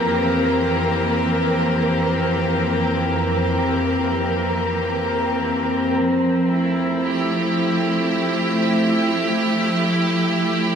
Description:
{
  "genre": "ambient",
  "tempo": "free time",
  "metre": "none",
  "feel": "none",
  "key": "F major",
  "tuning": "A4 = 442 Hz",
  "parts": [
    { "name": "bright symphonic string section", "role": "sustained chords", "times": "0.0-10.8 s", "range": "F2 to G4", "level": "-18 LUFS", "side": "equal", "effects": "none" },
    { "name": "wind-like tuned noise texture", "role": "texture", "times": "0.0-6.0 s", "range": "Bb4 to Bb5", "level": "-25 LUFS", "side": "equal", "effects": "built-in reverb" }
  ],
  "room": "wet cathedral reverb, RT60 5.4 s",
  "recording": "none",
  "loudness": "-18 LUFS",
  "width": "side -7 dB against mid",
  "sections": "0.0-6.0 A section; 6.0-10.8 B section",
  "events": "none",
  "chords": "0.0 C7/F; 6.0 Fmaj9"
}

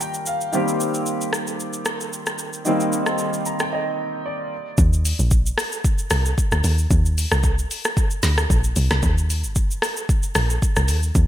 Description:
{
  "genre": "amapiano",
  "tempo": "113 BPM",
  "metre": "4/4",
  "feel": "swing 55% on 16ths",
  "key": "Eb major",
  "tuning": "A4 = 440 Hz",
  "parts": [
    { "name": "warm grand piano", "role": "accompaniment", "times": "0.0-4.8 s", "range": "Eb3 to Bb5", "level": "-23 LUFS", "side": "equal", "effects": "lush chorus" },
    { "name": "afro-pop drum kit", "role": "drums", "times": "0.0-11.3 s", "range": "hi-hat, kick drum, rim click, shaker, snare drum", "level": "-21 LUFS", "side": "equal", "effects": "gated reverb" },
    { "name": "deep log drum bass", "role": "bass", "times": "4.8-11.3 s", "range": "G1 to Eb2", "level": "-19 LUFS", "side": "equal", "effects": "none" }
  ],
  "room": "little or no reverb",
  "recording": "bright 1980s-style digital production",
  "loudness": "-19 LUFS",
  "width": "side -12 dB against mid",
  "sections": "0.0-4.8 A section; 4.8-11.3 B section",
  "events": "grand piano fill 0.0-0.5, 3.2-4.8; break 3.7-4.8; drop 4.8-11.3",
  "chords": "0.0 Ebmaj9; 0.5 Cm7/Eb; 4.5 N.C.; 4.8 Eb5; 9.0 Cm (rootless)"
}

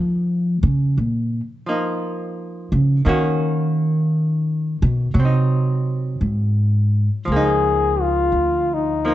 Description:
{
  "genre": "jazz ballad",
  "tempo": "57 BPM",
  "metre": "4/4",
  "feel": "swing 68% on 8ths",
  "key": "Db major",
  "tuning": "A4 = 440 Hz",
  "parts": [
    { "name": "archtop guitar, miked and amplified", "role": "accompaniment", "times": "0.0-9.1 s", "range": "Eb3 to Gb4", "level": "-25 LUFS", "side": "right 1 dB", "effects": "none" },
    { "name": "upright bass", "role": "bass", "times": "0.0-9.1 s", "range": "Db2 to F3", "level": "-18 LUFS", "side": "equal", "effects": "none" },
    { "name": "breathy flugelhorn", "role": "melody", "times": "7.3-9.1 s", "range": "Eb4 to Ab4", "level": "-18 LUFS", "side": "left 3 dB", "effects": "none" }
  ],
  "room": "light reverb",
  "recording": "nothing above 8.0 kHz",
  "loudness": "-17 LUFS",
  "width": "side -14 dB against mid",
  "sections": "0.0-7.3 A section; 7.3-9.1 B section",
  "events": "upright bass solo 0.0-7.3",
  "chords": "0.0 Db69; 3.1 Ebm7; 5.2 Ab7; 7.3 Db69"
}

